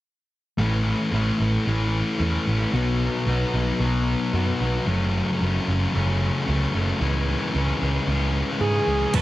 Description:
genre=indie rock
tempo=112 BPM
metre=4/4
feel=straight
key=A lydian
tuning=A4 = 437 Hz
part: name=thick fuzz guitar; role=riff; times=0.6-9.1 s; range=F#2 to E4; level=-23 LUFS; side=left 2 dB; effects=distortion
part: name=hollow-body short-scale picked electric bass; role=bass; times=0.6-9.2 s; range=F#1 to G#2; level=-24 LUFS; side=right 1 dB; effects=none
part: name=overdriven synth lead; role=melody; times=8.6-9.2 s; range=G#4 to B4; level=-23 LUFS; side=right 1 dB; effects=none
part: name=biting overdriven guitar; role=riff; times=9.1-9.2 s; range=A2 to A4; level=-27 LUFS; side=right 10 dB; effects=lush chorus
part: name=gated 80s digital drum machine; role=drums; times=9.1-9.2 s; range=crash cymbal, hi-hat, kick drum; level=-21 LUFS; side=equal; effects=overdrive
room=light reverb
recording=dark, warm production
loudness=-21 LUFS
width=side -16 dB against mid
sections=0.6-9.1 A section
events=none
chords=0.6 A; 2.7 B; 4.9 F#m; 7.0 C#m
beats=| 0.59 1.12 1.66 2.19 | 2.73 3.27 3.80 4.33 | 4.87 5.40 5.94 6.47 | 7.01 7.54 8.07 8.61 | 9.14

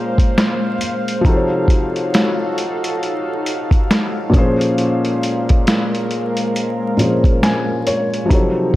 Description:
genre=lo-fi hip hop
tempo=68 BPM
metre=4/4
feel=swing 61% on 16ths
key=Bb minor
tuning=A4 = 442 Hz
part: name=felt-muted upright piano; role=accompaniment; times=0.0-8.8 s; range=Bb2 to Ab5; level=-18 LUFS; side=left 1 dB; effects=cassette tape
part: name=warbly tape-like pad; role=sustained chords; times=0.0-8.8 s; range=Eb3 to F5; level=-23 LUFS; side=equal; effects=chorus, built-in reverb
part: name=lo-fi sampler-style drum kit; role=drums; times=0.2-8.8 s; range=hi-hat, kick drum, snare drum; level=-16 LUFS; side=equal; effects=none
room=light reverb, digital ambience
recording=vinyl crackle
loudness=-14 LUFS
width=side -16 dB against mid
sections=0.0-8.8 A section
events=none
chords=0.0 Bbm7; 1.2 F7b9b13; 4.3 Bbm7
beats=0.36 | 1.25 2.13 3.01 3.89 | 4.78 5.66 6.54 7.42 | 8.31

